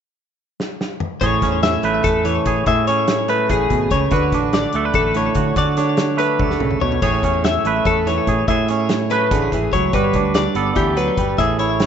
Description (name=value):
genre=math rock and midwest emo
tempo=289 BPM (eighths)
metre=7/8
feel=straight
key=A major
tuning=A4 = 439 Hz
part: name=loose indie drum kit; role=drums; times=0.6-11.9 s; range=crash cymbal, hi-hat, kick drum, snare drum, toms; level=-23 LUFS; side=equal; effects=none
part: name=twangy electric guitar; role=accompaniment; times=1.2-11.9 s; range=A2 to B4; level=-19 LUFS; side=right 8 dB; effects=none
part: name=twelve-string electric guitar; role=arpeggios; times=1.2-11.9 s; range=G4 to E5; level=-20 LUFS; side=left 8 dB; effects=spring reverb, digital delay
part: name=fingered electric bass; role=bass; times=1.2-11.9 s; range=G1 to D3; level=-24 LUFS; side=left 1 dB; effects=none
room=light reverb, small room ambience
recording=rough home demo mix, nothing above 7.8 kHz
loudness=-15 LUFS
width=side -8 dB against mid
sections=0.0-1.2 A section; 1.2-11.9 B section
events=drum fill 0.6-1.2, 6.4-7.0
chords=0.0 N.C.; 1.2 Amaj9; 4.1 D6; 7.0 Amaj9; 9.9 Gmaj9